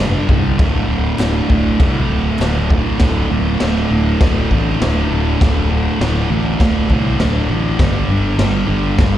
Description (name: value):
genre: garage rock duo or trio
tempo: 100 BPM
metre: 4/4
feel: straight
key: unclear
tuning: A4 = 440 Hz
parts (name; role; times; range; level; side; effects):
- thick fuzz guitar; riff; 0.0-9.2 s; D2 to G3; -17 LUFS; right 1 dB; distortion
- fuzz fingered electric bass; bass; 0.0-9.2 s; D1 to C2; -19 LUFS; equal; overdrive
- raw garage drum kit; drums; 0.3-9.1 s; crash cymbal, kick drum, snare drum; -18 LUFS; equal; none
- group handclap; percussion; 1.2-2.5 s; none; -36 LUFS; equal; none
room: little or no reverb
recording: live gig heard through the venue's PA, recital hall reverb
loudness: -13 LUFS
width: side -12 dB against mid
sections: 0.0-3.0 A section; 3.0-9.2 B section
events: none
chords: 0.0 G5; 0.6 D5; 7.8 G5